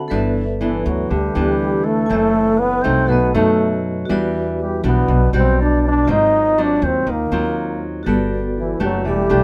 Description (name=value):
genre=bossa nova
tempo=121 BPM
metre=4/4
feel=straight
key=G major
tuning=A4 = 440 Hz
part: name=nylon-string guitar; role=accompaniment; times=0.0-9.4 s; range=F#2 to A4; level=-24 LUFS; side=equal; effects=none
part: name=vibraphone with medium hard mallets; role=accompaniment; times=0.0-9.4 s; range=F4 to B5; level=-29 LUFS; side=equal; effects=none
part: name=upright bass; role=bass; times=0.1-9.4 s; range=E1 to F#2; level=-24 LUFS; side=equal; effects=none
part: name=warm trombone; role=melody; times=0.6-9.4 s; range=E3 to Eb4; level=-20 LUFS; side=equal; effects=none
part: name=bright alto flute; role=second line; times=0.6-9.4 s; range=E4 to Eb5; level=-28 LUFS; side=equal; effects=none
room=light reverb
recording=none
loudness=-18 LUFS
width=mono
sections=0.1-9.4 A section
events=none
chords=0.1 G6; 2.1 F#m7b5; 3.1 B7; 4.1 Em9; 6.1 Ab13; 8.1 Gmaj9